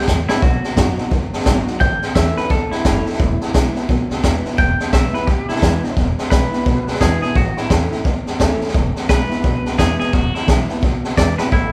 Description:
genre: rockabilly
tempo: 173 BPM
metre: 4/4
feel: swing 61% on 8ths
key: E major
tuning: A4 = 439 Hz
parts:
  - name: twangy electric guitar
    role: melody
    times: 0.0-11.7 s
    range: E4 to G5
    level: -25 LUFS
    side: equal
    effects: none
  - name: picked steel-string acoustic guitar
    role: accompaniment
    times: 0.0-11.7 s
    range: E2 to F#4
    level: -26 LUFS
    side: equal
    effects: none
  - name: upright bass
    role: bass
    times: 0.0-11.7 s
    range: E1 to G#2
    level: -25 LUFS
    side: equal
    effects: none
  - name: raw garage drum kit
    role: drums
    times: 0.0-11.6 s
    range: hi-hat, kick drum, snare drum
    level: -20 LUFS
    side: equal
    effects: none
room: light reverb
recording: band playing live in one room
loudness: -17 LUFS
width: mono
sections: 0.0-6.0 A section; 6.0-11.7 B section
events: drum fill 0.1-0.4, 11.3; clean electric guitar solo 6.0-11.7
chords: 0.4 B; 1.8 A; 3.2 E; 7.4 A; 8.7 E

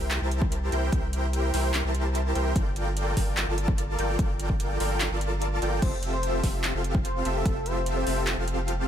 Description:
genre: future bass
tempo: 147 BPM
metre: 4/4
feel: half-time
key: F major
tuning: A4 = 440 Hz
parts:
  - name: dense compressed supersaw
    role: riff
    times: 0.0-8.9 s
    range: C4 to A5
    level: -29 LUFS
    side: equal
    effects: sidechain pumping
  - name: saturated sub bass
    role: bass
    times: 0.0-8.9 s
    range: F1 to C2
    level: -29 LUFS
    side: equal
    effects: sidechain pumping
  - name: pop drum kit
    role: drums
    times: 0.1-8.8 s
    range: crash cymbal, handclaps, hi-hat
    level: -32 LUFS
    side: equal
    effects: overdrive
  - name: electronic kick drum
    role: drums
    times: 0.4-7.5 s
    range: none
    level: -26 LUFS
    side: equal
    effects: overdrive
  - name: warm velvety synth lead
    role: melody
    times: 5.8-8.2 s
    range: A4 to C5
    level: -34 LUFS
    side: left 2 dB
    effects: chorus, sidechain pumping, ping-pong delay
room: little or no reverb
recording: none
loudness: -24 LUFS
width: side -9 dB against mid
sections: 0.0-8.9 A section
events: none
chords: 0.0 C7; 2.6 Gm9; 5.8 Fmaj9

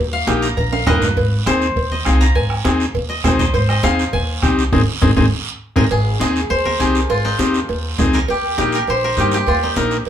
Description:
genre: latin, cumbia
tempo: 202 BPM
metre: 4/4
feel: straight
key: Ab major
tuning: A4 = 442 Hz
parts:
  - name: koto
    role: melody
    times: 0.0-10.1 s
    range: Eb4 to Bb5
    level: -21 LUFS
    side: left 1 dB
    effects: none
  - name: upright bass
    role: bass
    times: 0.0-10.1 s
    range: Ab1 to G2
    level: -20 LUFS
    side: equal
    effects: none
  - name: combo organ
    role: accompaniment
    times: 0.3-10.0 s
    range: Bb3 to Bb4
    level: -19 LUFS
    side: left 2 dB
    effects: none
  - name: bombo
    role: percussion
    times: 0.3-5.8 s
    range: none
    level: -22 LUFS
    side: left 1 dB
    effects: none
  - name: congas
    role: percussion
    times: 0.3-10.1 s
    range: none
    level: -24 LUFS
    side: right 1 dB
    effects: none
  - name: guiro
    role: percussion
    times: 0.3-10.1 s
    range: none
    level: -28 LUFS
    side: right 6 dB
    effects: none
  - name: cowbell and timbales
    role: percussion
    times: 0.6-10.1 s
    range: none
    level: -23 LUFS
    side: right 4 dB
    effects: none
room: wet small room reverb, RT60 0.5 s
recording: band playing live in one room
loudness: -14 LUFS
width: side -10 dB against mid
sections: 0.0-5.9 A section; 5.9-10.1 B section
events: koto solo 0.0-5.9; drum fill 0.7-1.2, 5.5-5.9; band accent 4.7-5.9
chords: 0.0 Eb; 1.2 Ab; 8.3 Eb

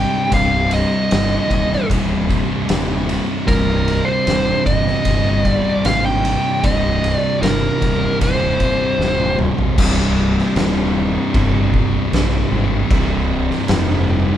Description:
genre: stoner and doom metal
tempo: 76 BPM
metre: 4/4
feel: straight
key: C minor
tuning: A4 = 440 Hz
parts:
  - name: fuzz lead guitar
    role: melody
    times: 0.0-9.4 s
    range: Bb4 to G5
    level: -19 LUFS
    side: equal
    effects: distortion
  - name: string machine, violins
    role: sustained chords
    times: 0.0-14.4 s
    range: C3 to D4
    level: -32 LUFS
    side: left 1 dB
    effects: none
  - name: thick fuzz guitar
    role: riff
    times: 0.0-14.4 s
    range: C2 to C3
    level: -23 LUFS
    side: left 6 dB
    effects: distortion
  - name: thick fuzz guitar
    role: riff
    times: 0.0-14.4 s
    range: C2 to C3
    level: -22 LUFS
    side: right 4 dB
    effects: distortion
  - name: fuzz fingered electric bass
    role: bass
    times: 0.0-14.3 s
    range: C1 to Bb1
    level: -21 LUFS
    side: equal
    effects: overdrive
  - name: oversized low-tuned drum kit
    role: drums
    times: 0.3-13.9 s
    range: crash cymbal, kick drum, ride cymbal, snare drum, toms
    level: -21 LUFS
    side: equal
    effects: none
room: moderate large studio reverb, RT60 1.1 s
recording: band playing live in one room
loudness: -14 LUFS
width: side -11 dB against mid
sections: 0.0-9.8 A section; 9.8-14.4 B section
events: drum fill 9.0-9.8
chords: 0.0 Cm

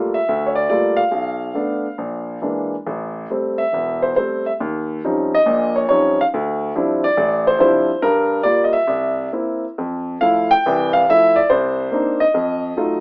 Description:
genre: solo jazz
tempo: 140 BPM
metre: 4/4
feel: swing 66% on 8ths, rubato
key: unclear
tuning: A4 = 441 Hz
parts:
  - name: warm concert grand piano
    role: solo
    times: 0.0-13.0 s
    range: E1 to G5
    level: -16 LUFS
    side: equal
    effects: none
room: moderate studio reverb, RT60 0.6 s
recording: rough home demo mix, AM radio sound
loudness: -16 LUFS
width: side -27 dB against mid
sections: 0.0-9.8 A section; 9.8-13.0 B section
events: none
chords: 0.0 Gm9; 1.1 Bm7b5; 2.0 Bb7#11; 2.9 Am7; 4.6 Eb13; 6.3 Dm11; 8.0 Gm7; 8.9 C7; 9.8 Fmaj7; 11.5 Cm9; 12.3 F7b9

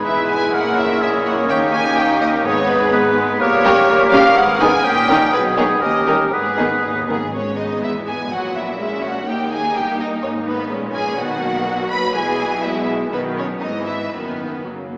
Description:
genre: quick classical-period movement for symphony orchestra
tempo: 125 BPM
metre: 2/4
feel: rubato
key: G# minor, B major from 11.2 s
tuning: A4 = 440 Hz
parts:
  - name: warm studio violin section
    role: melody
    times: 0.0-14.6 s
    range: G#4 to B5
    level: -24 LUFS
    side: equal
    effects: none
  - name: clear oboe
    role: second line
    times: 0.0-7.1 s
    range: G4 to B4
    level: -23 LUFS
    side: equal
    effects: none
  - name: mellow small flute group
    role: second line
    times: 0.0-7.1 s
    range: B5 to D#6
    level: -27 LUFS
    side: equal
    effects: none
  - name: warm clarinet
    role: second line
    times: 0.0-7.1 s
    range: G4 to B4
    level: -26 LUFS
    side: equal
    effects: none
  - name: warm symphonic violin section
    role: second line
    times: 0.0-14.6 s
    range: G#3 to C#5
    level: -28 LUFS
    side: equal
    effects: none
  - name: mellow bassoon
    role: accompaniment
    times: 0.0-7.1 s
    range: G#3 to C#4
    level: -25 LUFS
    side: equal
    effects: none
  - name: rich symphonic viola section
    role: accompaniment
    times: 0.0-14.9 s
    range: D#3 to E4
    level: -25 LUFS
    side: equal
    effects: none
  - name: mellow French horn section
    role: sustained chords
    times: 0.0-7.2 s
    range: G3 to A#4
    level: -27 LUFS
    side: equal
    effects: none
  - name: dark chamber double bass section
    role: bass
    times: 0.0-14.9 s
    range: E1 to D#2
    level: -35 LUFS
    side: equal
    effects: none
  - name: warm chamber cello section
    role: bass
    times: 0.0-14.9 s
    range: D#2 to B2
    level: -29 LUFS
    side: equal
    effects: none
  - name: timpani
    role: percussion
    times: 1.5-3.1, 6.3-7.3 s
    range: G#2 to D#3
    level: -40 LUFS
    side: equal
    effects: none
room: wet concert hall reverb, RT60 2.1 s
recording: heard from further back in the room, small speaker sound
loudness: -18 LUFS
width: mono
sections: 0.0-7.3 A section; 7.3-15.0 A section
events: timpani fill 6.3-7.3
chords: 0.1 E; 0.5 A#m7b5; 1.5 D#7; 2.5 G#m; 3.4 Gdim/Bb; 4.4 G#m; 4.8 D#7/A#; 5.3 G#m/B; 5.8 D#7; 6.3 G#m; 7.8 E; 8.3 F#9/A#; 9.3 D#; 10.2 G#5; 11.2 B; 12.1 E/B; 13.1 B; 13.6 E/G#; 14.1 B/F#

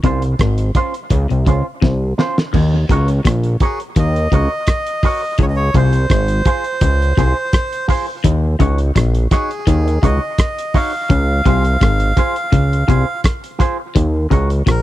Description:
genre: roots reggae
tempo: 84 BPM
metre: 4/4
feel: straight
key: Eb dorian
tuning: A4 = 439 Hz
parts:
  - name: electric guitar with an envelope filter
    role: accompaniment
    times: 0.0-14.5 s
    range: Db4 to Db5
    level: -24 LUFS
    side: right 2 dB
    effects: tape echo
  - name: semi-hollow electric guitar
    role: riff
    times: 0.0-14.8 s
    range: Ab2 to Eb3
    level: -21 LUFS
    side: left 5 dB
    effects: phaser
  - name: fat analog bass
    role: bass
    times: 0.0-14.8 s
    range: Ab1 to Eb2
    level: -15 LUFS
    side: equal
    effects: none
  - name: cloth-damped thuddy drum kit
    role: drums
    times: 0.0-14.8 s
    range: crash cymbal, hi-hat, kick drum, rim click, snare drum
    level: -15 LUFS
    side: equal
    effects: none
  - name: melodica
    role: melody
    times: 3.6-14.8 s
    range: Ab4 to F5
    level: -21 LUFS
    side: right 1 dB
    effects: tape echo
room: little or no reverb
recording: dry, close 1970s-style studio recording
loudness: -13 LUFS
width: side -15 dB against mid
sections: 0.0-2.5 A section; 2.5-14.0 B section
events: drum fill 1.8-2.5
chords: 0.0 Dbmaj7; 2.5 Ebm7; 5.4 Dbmaj7; 8.2 Ebm7; 11.1 Dbmaj7; 14.0 Ebm7

